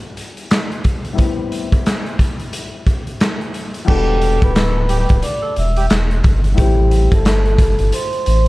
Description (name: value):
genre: hip hop, boom-bap hip-hop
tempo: 89 BPM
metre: 4/4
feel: swing 60% on 16ths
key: E minor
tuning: A4 = 438 Hz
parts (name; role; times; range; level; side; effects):
- dark upright piano; accompaniment; 0.0-8.5 s; E2 to F#4; -27 LUFS; left 6 dB; high-pass filter, low-pass filter
- raw garage drum kit; drums; 0.2-8.5 s; crash cymbal, handclaps, hi-hat, kick drum, snare drum; -17 LUFS; equal; none
- vibraphone with soft mallets; melody; 3.9-8.5 s; G4 to E6; -20 LUFS; equal; high-pass filter, low-pass filter, slapback echo
- warm horn section; stabs; 3.9-5.9 s; G3 to A4; -25 LUFS; right 5 dB; high-pass filter, low-pass filter, slapback echo
- saturated sub bass; bass; 3.9-8.5 s; D1 to A1; -16 LUFS; equal; none
room: little or no reverb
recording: dark, warm production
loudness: -14 LUFS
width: side -20 dB against mid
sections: 0.0-3.9 A section; 3.9-8.5 B section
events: none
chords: 0.0 Em7; 1.2 Am9; 3.9 Em7; 6.6 Am7